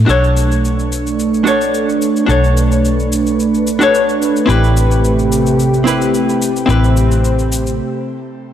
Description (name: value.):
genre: sunset chillout.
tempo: 109 BPM.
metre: 4/4.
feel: straight.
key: B phrygian.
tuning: A4 = 440 Hz.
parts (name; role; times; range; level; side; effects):
vintage muted fingered electric bass; bass; 0.0-7.8 s; A1 to B1; -14 LUFS; equal; none.
hollow-body jazz guitar; accompaniment; 0.1-8.2 s; C4 to C#5; -16 LUFS; moving between left 4 dB and right 2 dB; auto-pan, analog delay, shimmer reverb.
lush unison pad; sustained chords; 0.1-7.8 s; C3 to B4; -16 LUFS; right 2 dB; chorus, vintage 12-bit sampler grit, shimmer reverb.
cabasa; drums; 0.1-7.8 s; none; -27 LUFS; left 3 dB; overdrive.
room: moderate lush hall reverb, RT60 2.4 s.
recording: dry, gritty hardware recording.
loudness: -11 LUFS.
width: side -10 dB against mid.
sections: 0.1-8.5 A section.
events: filter sweep on analog synth pad 0.1-8.5; break 7.8-8.5.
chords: 0.1 Bm9; 4.5 Am9.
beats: | 0.08 0.63 1.18 1.73 | 2.29 2.83 3.38 3.94 | 4.49 5.04 5.59 6.14 | 6.69 7.24 7.79.